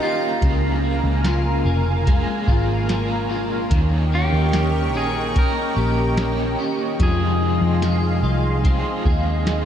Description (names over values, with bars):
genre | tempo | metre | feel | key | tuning
dream pop | 73 BPM | 4/4 | straight | Eb mixolydian | A4 = 440 Hz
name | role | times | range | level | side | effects
electric guitar at the edge of break-up | melody | 0.0-9.7 s | F4 to Bb4 | -26 LUFS | right 1 dB | tape echo
crunchy overdriven guitar | accompaniment | 0.0-9.7 s | F2 to Ab4 | -28 LUFS | right 4 dB | tremolo, wide subtle chorus
lush unison pad | sustained chords | 0.0-9.7 s | Ab4 to Db6 | -28 LUFS | equal | chorus, phaser
clean electric guitar | arpeggios | 0.0-9.7 s | Db3 to Ab4 | -25 LUFS | left 3 dB | ensemble chorus, tape echo
backwards swelling texture | texture | 0.0-7.4 s | F5 to Bb5 | -39 LUFS | equal | none
vintage muted picked electric bass | bass | 0.4-9.7 s | F1 to F2 | -21 LUFS | equal | none
soft vintage rhythm box | drums | 0.4-9.7 s | hi-hat, kick drum, snare drum | -21 LUFS | equal | none
room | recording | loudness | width
moderate lush hall reverb, RT60 2.6 s | dreamy mix soaked in reverb | -17 LUFS | side -9 dB against mid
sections
0.0-9.7 A section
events
none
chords
0.4 Bbm7; 3.7 Eb7; 7.0 Fm7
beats
| 0.42 1.25 2.07 2.89 | 3.71 4.54 5.36 6.18 | 7.00 7.82 8.64 9.47